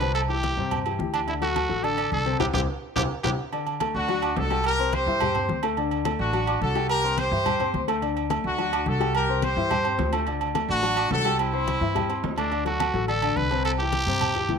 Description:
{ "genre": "latin, salsa", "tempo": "214 BPM", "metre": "4/4", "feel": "straight", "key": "unclear", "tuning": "A4 = 441 Hz", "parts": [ { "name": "growling trumpet", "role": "melody", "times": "0.0-3.3, 12.4-14.6 s", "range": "D4 to B4", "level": "-28 LUFS", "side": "right 2 dB", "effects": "none" }, { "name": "dark grand piano", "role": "accompaniment", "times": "0.0-14.6 s", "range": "C3 to D6", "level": "-29 LUFS", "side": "left 11 dB", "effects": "none" }, { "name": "upright bass", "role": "bass", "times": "0.0-14.6 s", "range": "A1 to G2", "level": "-30 LUFS", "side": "right 1 dB", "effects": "none" }, { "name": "agogo bells and timbales", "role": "percussion", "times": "0.0-14.5 s", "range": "none", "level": "-29 LUFS", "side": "right 12 dB", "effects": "none" }, { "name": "congas", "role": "percussion", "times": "0.0-14.6 s", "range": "none", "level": "-34 LUFS", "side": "left 6 dB", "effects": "none" }, { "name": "brilliant horn section", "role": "melody", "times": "3.9-12.3 s", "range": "C4 to C5", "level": "-26 LUFS", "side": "equal", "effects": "none" } ], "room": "light reverb", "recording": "1960s-style stereo with parts hard left and right", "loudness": "-22 LUFS", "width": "side -6 dB against mid", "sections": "0.0-3.5 A section; 3.5-12.5 B section; 12.5-14.6 A section", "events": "band accent 2.4-3.5; drum fill 3.0-3.5", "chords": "0.2 C; 1.3 D; 2.4 C; 3.5 D; 4.6 C7; 5.8 D; 6.9 C7; 8.0 D; 9.1 C7; 10.3 D; 11.4 C; 12.5 D; 13.6 C", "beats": "| 0.15 0.43 0.71 1.00 | 1.28 1.56 1.84 2.12 | 2.40 2.68 2.96 3.24 | 3.52 3.81 4.09 4.37 | 4.65 4.93 5.21 5.49 | 5.77 6.05 6.33 6.62 | 6.90 7.18 7.46 7.74 | 8.02 8.30 8.58 8.86 | 9.14 9.43 9.71 9.99 | 10.27 10.55 10.83 11.11 | 11.39 11.68 11.96 12.24 | 12.52 12.80 13.08 13.37 | 13.65 13.93 14.21 14.49" }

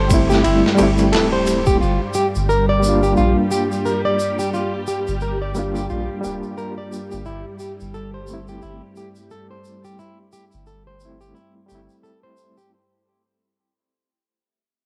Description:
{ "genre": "trip hop", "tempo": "88 BPM", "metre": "4/4", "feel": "swing 58% on 16ths", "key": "unclear", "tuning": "A4 = 440 Hz", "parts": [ { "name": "overdriven reed electric piano", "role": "accompaniment", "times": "0.0-12.7 s", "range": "G3 to F4", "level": "-24 LUFS", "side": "equal", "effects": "fast tremolo, cassette tape, tape echo" }, { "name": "string machine, cellos", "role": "sustained chords", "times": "0.0-12.7 s", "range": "G3 to G4", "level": "-28 LUFS", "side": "equal", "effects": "ensemble chorus, vintage 12-bit sampler grit, cassette tape" }, { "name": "flamenco guitar", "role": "arpeggios", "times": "0.0-12.7 s", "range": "E4 to D5", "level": "-24 LUFS", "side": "equal", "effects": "low-pass filter, cassette tape, analog delay" }, { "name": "soft dub sub bass", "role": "bass", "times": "0.0-11.9 s", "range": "D1 to Bb1", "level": "-25 LUFS", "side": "equal", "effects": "none" }, { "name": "boom bap sampler-style drum kit", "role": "drums", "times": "0.1-1.8 s", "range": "kick drum, ride cymbal, snare drum", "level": "-23 LUFS", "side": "equal", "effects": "overdrive, cassette tape" }, { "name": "tube shaker", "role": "percussion", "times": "0.1-12.7 s", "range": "none", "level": "-37 LUFS", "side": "equal", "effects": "none" } ], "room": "moderate spring reverb, RT60 2.8 s", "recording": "home recording on cassette", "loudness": "-18 LUFS", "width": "mono", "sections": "0.0-12.7 A section", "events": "fade-out 0.0-12.7", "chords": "0.0 Am7/G; 1.8 Gm7; 7.3 Am7/G", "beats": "0.44 1.13 | 1.81 2.49 3.17 3.85 | 4.54 5.22 5.90 6.58 | 7.26 7.94 8.63 9.31 | 9.99 10.67 11.35 12.04" }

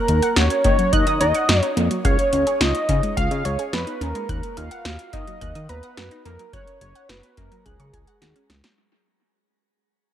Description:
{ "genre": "synth-pop", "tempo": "107 BPM", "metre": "4/4", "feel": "straight", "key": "Eb minor", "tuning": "A4 = 440 Hz", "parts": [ { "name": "wide unison lead", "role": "melody", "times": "0.0-8.5 s", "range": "Ab4 to F5", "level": "-23 LUFS", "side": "equal", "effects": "shimmer reverb, analog delay" }, { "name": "chorused synth bass", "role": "bass", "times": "0.1-8.6 s", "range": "Gb1 to Eb3", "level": "-23 LUFS", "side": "equal", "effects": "none" }, { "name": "electro analog drum machine", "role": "drums", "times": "0.1-8.8 s", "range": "hi-hat, kick drum, snare drum", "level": "-23 LUFS", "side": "equal", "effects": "analog delay" }, { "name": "wide unison pluck", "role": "arpeggios", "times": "0.2-8.7 s", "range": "Gb3 to Gb6", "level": "-28 LUFS", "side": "right 1 dB", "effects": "shimmer reverb, analog delay" } ], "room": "moderate spring reverb, RT60 2.1 s", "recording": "echo-heavy mix", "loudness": "-18 LUFS", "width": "side -10 dB against mid", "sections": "0.0-8.8 A section", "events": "fade-out 0.0-8.8; drum fill 8.2-8.8", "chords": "0.0 Ebm; 2.0 Dbadd9; 4.3 Ebm; 6.5 Gb; 7.7 Dbsus4", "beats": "0.37 0.93 1.49 | 2.05 2.61 3.17 3.73 | 4.29 4.85 5.41 5.97 | 6.53 7.09 7.66 8.22" }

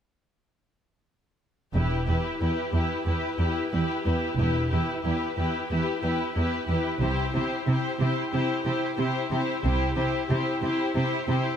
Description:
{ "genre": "cinematic", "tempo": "91 BPM", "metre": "4/4", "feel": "straight", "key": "E minor", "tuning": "A4 = 439 Hz", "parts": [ { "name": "rich symphonic violin section", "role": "melody", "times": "1.7-11.6 s", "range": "B4 to C5", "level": "-34 LUFS", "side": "left 2 dB", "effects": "none" }, { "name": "rich symphonic violin section", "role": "second line", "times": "1.7-11.6 s", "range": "G4", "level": "-32 LUFS", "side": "left 1 dB", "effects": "none" }, { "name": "rich symphonic viola section", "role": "accompaniment", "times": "1.7-11.6 s", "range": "E4", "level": "-30 LUFS", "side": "left 2 dB", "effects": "none" }, { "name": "clear symphonic double bass section", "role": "bass", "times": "1.7-9.9 s", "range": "E1 to C2", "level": "-28 LUFS", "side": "right 1 dB", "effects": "none" }, { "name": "rich symphonic cello section", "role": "bass", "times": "1.7-11.4 s", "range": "E2 to C3", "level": "-28 LUFS", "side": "right 1 dB", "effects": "none" } ], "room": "light reverb", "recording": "close, detailed microphones", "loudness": "-24 LUFS", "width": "side -8 dB against mid", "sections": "1.7-11.6 A section", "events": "build-up 1.7-11.6", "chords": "1.7 Em; 7.0 C", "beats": "| 1.75 2.41 3.07 3.73 | 4.39 5.05 5.71 6.36 | 7.02 7.67 8.33 8.99 | 9.64 10.30 10.95" }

